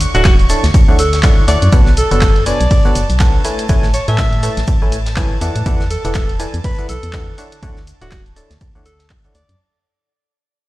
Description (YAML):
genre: piano house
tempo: 122 BPM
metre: 4/4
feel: swing 58% on 16ths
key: unclear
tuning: A4 = 439 Hz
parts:
  - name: warm studio violin section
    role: sustained chords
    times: 0.0-9.6 s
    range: A5 to C#6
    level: -27 LUFS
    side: right 2 dB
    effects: sidechain pumping
  - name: organ-like FM bass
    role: bass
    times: 0.0-9.6 s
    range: D1 to A2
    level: -17 LUFS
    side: equal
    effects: tube saturation, sidechain pumping
  - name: punchy analog drum machine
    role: drums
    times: 0.0-9.6 s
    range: handclaps, hi-hat, ride cymbal, shaker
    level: -24 LUFS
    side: right 1 dB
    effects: none
  - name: tight metal drum kit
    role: drums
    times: 0.0-9.5 s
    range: hi-hat, shaker, snare drum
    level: -33 LUFS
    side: left 1 dB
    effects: none
  - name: warm alto saxophone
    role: melody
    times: 0.1-9.6 s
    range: F#4 to E5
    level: -21 LUFS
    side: equal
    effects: tape echo
  - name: barking FM electric piano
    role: riff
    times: 0.1-9.4 s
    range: B2 to A5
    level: -22 LUFS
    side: equal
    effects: chorus, tremolo, sidechain pumping, tape echo
  - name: electronic kick drum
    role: drums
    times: 0.2-9.2 s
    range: none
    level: -13 LUFS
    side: equal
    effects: none
room: studio reverb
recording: played on a big sound system in a bare room, stone room reverb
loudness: -11 LUFS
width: side -18 dB against mid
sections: 0.0-9.6 A section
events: drop 0.0-9.6; fade-out 1.7-9.6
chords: 0.0 Dmaj9; 1.7 Bm9; 3.4 Amaj9; 5.4 E9sus4; 7.4 Dmaj9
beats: 0.25 0.74 1.23 | 1.73 2.22 2.71 3.20 | 3.69 4.18 4.68 5.17 | 5.66 6.15 6.64 7.13 | 7.63 8.12 8.61 9.10